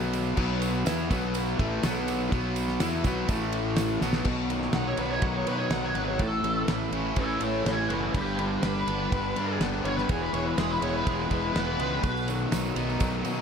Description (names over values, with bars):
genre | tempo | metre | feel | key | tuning
classic rock | 124 BPM | 4/4 | straight | B mixolydian | A4 = 440 Hz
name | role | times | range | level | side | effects
crunchy overdriven guitar | riff | 0.0-13.4 s | G2 to E4 | -31 LUFS | left 9 dB | slapback echo
distorted electric guitar | riff | 0.0-13.4 s | G2 to E4 | -32 LUFS | right 10 dB | distortion, slapback echo
fuzz fingered electric bass | bass | 0.0-13.4 s | E1 to B2 | -32 LUFS | equal | overdrive
damped 70s drum kit | drums | 0.1-13.4 s | crash cymbal, kick drum, ride cymbal, snare drum | -32 LUFS | equal | none
tambourine | percussion | 0.1-4.2, 12.0-13.4 s | none | -47 LUFS | right 13 dB | none
bluesy overdriven lead guitar | melody | 4.7-12.3 s | F#4 to F#5 | -31 LUFS | equal | wah, distortion, slapback echo, tape echo
room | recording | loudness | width
moderate scoring stage reverb, RT60 2.0 s, small room ambience | big arena sound | -25 LUFS | side -7 dB against mid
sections
0.0-4.3 A section; 4.3-13.4 B section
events
drum fill 4.0; lead electric guitar solo 4.3-13.4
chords
0.0 B5; 3.3 A5; 4.0 B5; 4.3 B; 6.2 A; 8.1 G; 10.1 E; 12.0 B